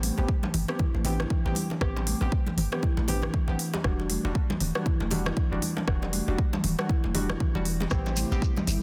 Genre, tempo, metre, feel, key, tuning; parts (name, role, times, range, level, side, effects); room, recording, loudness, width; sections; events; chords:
afro house; 118 BPM; 4/4; swing 59% on 16ths; A dorian; A4 = 441 Hz
marimba with soft mallets; arpeggios; 0.0-8.7 s; E3 to E4; -36 LUFS; equal; sidechain pumping, digital delay
deep mellow chord stab; stabs; 0.0-8.4 s; G3 to G4; -38 LUFS; equal; chorus, sidechain pumping, digital delay
warm 808-style bass; bass; 0.0-8.8 s; D1 to A1; -32 LUFS; equal; tube saturation, sidechain pumping
afro-pop drum kit; drums; 0.0-8.8 s; hi-hat, rim click, toms; -36 LUFS; equal
congas; percussion; 0.0-8.8 s; -37 LUFS; equal
bongos; percussion; 0.2-8.7 s; -40 LUFS; equal
electronic kick drum; drums; 0.3-8.5 s; -29 LUFS; equal; overdrive
warm analog pad; sustained chords; 7.9-8.8 s; C3 to E4; -39 LUFS; equal; chorus, sidechain pumping
shekere; percussion; 7.9-8.8 s; -41 LUFS; equal
light reverb, studio reverb; dense, heavily limited modern master; -27 LUFS; mono
0.0-8.8 A section
0.0 Am7; 3.8 Em7; 7.9 Am7